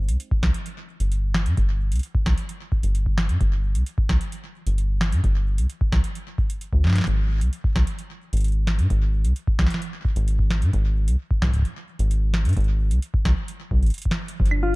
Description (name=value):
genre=IDM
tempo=131 BPM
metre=4/4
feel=straight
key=unclear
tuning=A4 = 440 Hz
part: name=rubbery square bass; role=bass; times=0.0-14.8 s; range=G1 to Ab2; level=-20 LUFS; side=equal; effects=none
part: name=booming analog drum machine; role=drums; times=0.1-14.6 s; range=claves, hi-hat, snare drum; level=-29 LUFS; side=equal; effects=digital delay
part: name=electronic kick drum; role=drums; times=0.3-14.5 s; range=none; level=-23 LUFS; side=equal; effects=none
part: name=harp-like synth pluck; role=arpeggios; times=14.4-14.7 s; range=F3 to F4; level=-35 LUFS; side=right 3 dB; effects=chorus, tape echo
part: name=mellow electric guitar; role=melody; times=14.6-14.8 s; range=F4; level=-22 LUFS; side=left 4 dB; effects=none
room=digital ambience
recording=dark, warm production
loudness=-20 LUFS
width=side -23 dB against mid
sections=0.0-14.8 A section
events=none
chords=0.0 G5; 7.1 N.C.